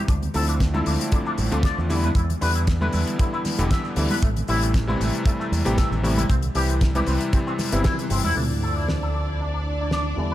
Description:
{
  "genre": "nu-disco, nu disco",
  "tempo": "116 BPM",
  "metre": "4/4",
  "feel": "swing 54% on 16ths",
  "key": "D dorian",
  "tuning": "A4 = 440 Hz",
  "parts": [
    { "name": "clear electric grand piano", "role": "accompaniment", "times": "0.0-10.3 s", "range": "C3 to B4", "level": "-26 LUFS", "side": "left 1 dB", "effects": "sidechain pumping, low-pass filter, diffuse ambient delay" },
    { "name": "electric guitar with an envelope filter", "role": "riff", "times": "0.1-10.3 s", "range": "A2 to E5", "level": "-30 LUFS", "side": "left 2 dB", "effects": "lush chorus, low-pass filter, diffuse ambient delay" },
    { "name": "fingered electric bass with an envelope filter", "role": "bass", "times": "0.1-10.3 s", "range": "E1 to E2", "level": "-24 LUFS", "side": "equal", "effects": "tube saturation" },
    { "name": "damped 70s drum kit", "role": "drums", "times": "0.1-10.0 s", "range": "hi-hat, snare drum", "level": "-31 LUFS", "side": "left 2 dB", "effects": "none" },
    { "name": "kick drum", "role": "drums", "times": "0.1-8.0 s", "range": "none", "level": "-22 LUFS", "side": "equal", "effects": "none" },
    { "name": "maracas and congas", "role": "percussion", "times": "0.1-8.3 s", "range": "none", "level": "-32 LUFS", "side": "right 2 dB", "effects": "none" },
    { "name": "dark studio string section", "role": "sustained chords", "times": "8.4-10.3 s", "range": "D4 to D5", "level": "-31 LUFS", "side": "right 1 dB", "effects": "sidechain pumping" },
    { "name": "sub drop", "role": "sound effects", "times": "8.4-10.3 s", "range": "none", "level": "-32 LUFS", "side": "right 1 dB", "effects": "none" }
  ],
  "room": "moderate plate reverb, RT60 1.6 s, small room ambience",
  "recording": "dreamy mix soaked in reverb",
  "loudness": "-20 LUFS",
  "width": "side -14 dB against mid",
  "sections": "0.0-8.4 A section; 8.4-10.3 B section",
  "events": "band accent 7.8; impact 8.4-10.3; filter sweep on electric grand piano 8.4-10.3",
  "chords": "0.1 Dm9; 1.9 Em7; 4.2 Am7; 6.3 Cmaj7; 8.4 Dm9"
}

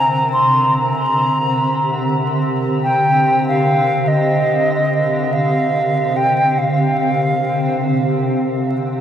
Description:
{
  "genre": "ambient",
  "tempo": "free time",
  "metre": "none",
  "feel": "none",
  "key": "C minor",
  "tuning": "A4 = 440 Hz",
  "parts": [
    { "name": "hollow wooden flute", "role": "melody", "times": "0.0-8.3 s", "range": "Eb5 to C6", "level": "-16 LUFS", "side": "equal", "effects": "dub echo" },
    { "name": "granular cloud pad", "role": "sustained chords", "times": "0.0-9.0 s", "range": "C3 to C5", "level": "-18 LUFS", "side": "equal", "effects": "built-in reverb, vintage 12-bit sampler grit" }
  ],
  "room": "moderate spring reverb, RT60 1.8 s, studio ambience",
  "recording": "echo-heavy mix, vinyl crackle",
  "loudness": "-14 LUFS",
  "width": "side -9 dB against mid",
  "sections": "0.0-9.0 A section",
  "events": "none",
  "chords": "0.0 C9sus4"
}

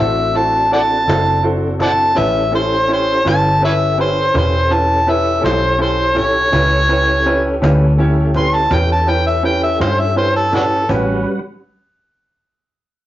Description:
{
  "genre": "slow blues",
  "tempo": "55 BPM (dotted quarters)",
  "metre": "12/8",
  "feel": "straight",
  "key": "A mixolydian",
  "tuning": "A4 = 441 Hz",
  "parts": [
    { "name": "overdriven harmonica", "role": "melody", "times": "0.0-10.9 s", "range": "D4 to C6", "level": "-15 LUFS", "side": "equal", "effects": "none" },
    { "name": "bright upright piano", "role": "accompaniment", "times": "0.0-11.2 s", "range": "C#4 to D5", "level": "-19 LUFS", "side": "right 1 dB", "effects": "none" },
    { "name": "tonewheel organ", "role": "sustained chords", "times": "0.0-11.4 s", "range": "G3 to F#5", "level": "-24 LUFS", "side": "equal", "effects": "slow rotary speaker, chorus vibrato" },
    { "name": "vintage muted fingered electric bass", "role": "bass", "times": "0.0-11.2 s", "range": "E1 to G2", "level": "-18 LUFS", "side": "equal", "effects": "none" },
    { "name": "cajon", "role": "drums", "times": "0.3-11.1 s", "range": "none", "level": "-25 LUFS", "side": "equal", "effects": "none" }
  ],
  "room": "wet studio reverb, RT60 0.6 s",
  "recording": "rough rehearsal-room recording, warm saturation, nothing above 7.5 kHz",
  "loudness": "-12 LUFS",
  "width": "side -14 dB against mid",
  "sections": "0.0-10.9 A section; 10.9-13.1 B section",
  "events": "harmonica solo 0.0-10.9",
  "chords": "0.0 D7; 2.2 A7; 10.9 A13"
}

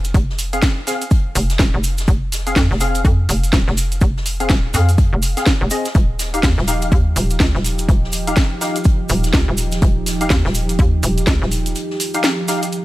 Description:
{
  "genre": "bass house",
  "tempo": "124 BPM",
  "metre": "4/4",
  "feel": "swing 60% on 16ths",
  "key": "F minor",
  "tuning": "A4 = 442 Hz",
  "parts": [
    { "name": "hollow knocking FM bass", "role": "bass", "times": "0.0-11.7 s", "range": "Eb1 to F2", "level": "-18 LUFS", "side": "equal", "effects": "overdrive, sidechain pumping" },
    { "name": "garage drum kit", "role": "drums", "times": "0.0-12.8 s", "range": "hi-hat, snare drum", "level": "-22 LUFS", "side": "equal", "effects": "overdrive, small room ambience" },
    { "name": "cabasa", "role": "percussion", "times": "0.0-12.8 s", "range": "none", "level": "-28 LUFS", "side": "right 3 dB", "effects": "none" },
    { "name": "electronic kick drum", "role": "drums", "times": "0.1-11.4 s", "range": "none", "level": "-15 LUFS", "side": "equal", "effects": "small room ambience" },
    { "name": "soft-mallet drum kit", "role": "drums", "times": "0.1-12.6 s", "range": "hi-hat, snare drum", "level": "-32 LUFS", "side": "left 2 dB", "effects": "sidechain pumping on hats, high-pass filter on hats, small room ambience, high-pass filter on snare, high-pass filter on room" },
    { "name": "percussive organ stab", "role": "stabs", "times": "0.5-12.6 s", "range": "C4 to F5", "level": "-24 LUFS", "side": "left 2 dB", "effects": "ensemble chorus, sidechain pumping, dub echo" },
    { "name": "sweeping resonant pad", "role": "sustained chords", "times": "6.0-12.8 s", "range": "F3 to G4", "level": "-25 LUFS", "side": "right 2 dB", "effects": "chorus, sidechain pumping" }
  ],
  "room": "small room ambience",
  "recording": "none",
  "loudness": "-14 LUFS",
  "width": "side -17 dB against mid",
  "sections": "0.0-12.8 A section",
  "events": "break 11.8-12.8",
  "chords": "0.0 Fm; 6.0 Ebadd9"
}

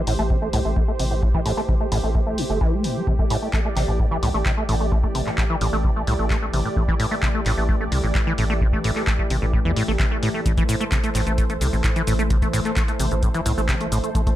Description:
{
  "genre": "acid house",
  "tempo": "130 BPM",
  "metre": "4/4",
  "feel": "straight",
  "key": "A minor",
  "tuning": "A4 = 440 Hz",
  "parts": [
    { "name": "warm analog pad", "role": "sustained chords", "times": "0.0-14.4 s", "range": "E3 to D5", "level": "-28 LUFS", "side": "equal", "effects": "chorus, sidechain pumping" },
    { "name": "acid bass, saw", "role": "riff", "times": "0.0-14.3 s", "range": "A2 to A3", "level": "-24 LUFS", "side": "equal", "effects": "analog chorus, ping-pong delay" },
    { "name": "round analog bass", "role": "bass", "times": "0.1-14.2 s", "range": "G1 to E2", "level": "-24 LUFS", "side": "equal", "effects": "sidechain pumping" },
    { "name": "punchy analog drum machine", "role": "drums", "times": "0.1-14.4 s", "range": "cabasa, handclaps, hi-hat", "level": "-30 LUFS", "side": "equal", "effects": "none" },
    { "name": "electronic kick drum", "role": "drums", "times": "0.3-14.4 s", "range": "none", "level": "-22 LUFS", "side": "equal", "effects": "none" }
  ],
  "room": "light reverb",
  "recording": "dark, warm production",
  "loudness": "-19 LUFS",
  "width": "side -13 dB against mid",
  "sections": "0.0-14.4 A section",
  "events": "filter sweep on acid bass 0.0-14.4",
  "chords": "0.0 Am7"
}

